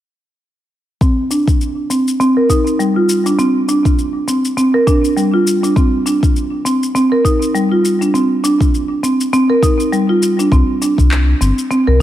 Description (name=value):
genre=organic downtempo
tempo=101 BPM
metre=4/4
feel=swing 57% on 16ths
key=C minor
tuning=A4 = 439 Hz
part: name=marimba with medium mallets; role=arpeggios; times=1.0-12.0 s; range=G3 to Bb4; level=-13 LUFS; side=right 1 dB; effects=low-pass filter, digital delay
part: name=electronic kick drum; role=drums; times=1.0-12.0 s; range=none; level=-14 LUFS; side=left 1 dB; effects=none
part: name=electronic shaker and handclaps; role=drums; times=1.0-11.8 s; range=none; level=-24 LUFS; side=left 4 dB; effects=overdrive
part: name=round analog bass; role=bass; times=10.5-12.0 s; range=G1 to C2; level=-12 LUFS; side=left 1 dB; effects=sidechain pumping
room=light reverb, digital ambience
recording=none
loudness=-12 LUFS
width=side -12 dB against mid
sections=1.0-12.0 A section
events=filter sweep on marimba 1.0-12.0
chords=1.0 Cm; 3.4 N.C.